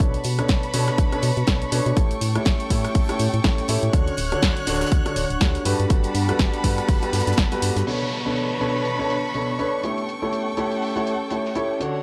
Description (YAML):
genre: piano house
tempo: 122 BPM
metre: 4/4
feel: swing 57% on 16ths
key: B minor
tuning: A4 = 440 Hz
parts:
  - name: rich studio violin section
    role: sustained chords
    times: 0.0-12.0 s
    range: G3 to F#6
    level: -32 LUFS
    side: equal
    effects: sidechain pumping
  - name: dark concert grand piano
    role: riff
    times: 0.0-12.0 s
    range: B2 to C#5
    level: -28 LUFS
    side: equal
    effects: sidechain pumping, analog delay
  - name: organ-like FM bass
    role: bass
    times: 0.0-7.8 s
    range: D1 to B2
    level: -27 LUFS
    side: equal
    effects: sidechain pumping
  - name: deep reggae drum kit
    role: drums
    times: 0.0-11.9 s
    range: hi-hat, snare drum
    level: -41 LUFS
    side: equal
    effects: none
  - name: electronic kick drum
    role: drums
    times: 0.0-7.5 s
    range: none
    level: -23 LUFS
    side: equal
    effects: none
  - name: punchy analog drum machine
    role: drums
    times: 0.0-7.8 s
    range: hi-hat, rim click, snare drum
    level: -29 LUFS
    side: equal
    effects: none
  - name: warbly tape-like pad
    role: texture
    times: 0.0-12.0 s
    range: B3 to C#6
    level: -36 LUFS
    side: equal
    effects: chorus, built-in reverb, sidechain pumping
  - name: downlifter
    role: sound effects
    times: 7.9-11.8 s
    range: none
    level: -37 LUFS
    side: equal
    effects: none
room: small room ambience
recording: dry, gritty hardware recording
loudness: -22 LUFS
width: mono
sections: 0.0-7.9 A section; 7.9-12.0 B section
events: fade-in on ambient pad 0.0-7.9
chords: 0.0 Bm9; 2.0 A7; 3.9 Dmaj7; 5.7 Gmaj9; 7.9 Bm9; 9.8 A7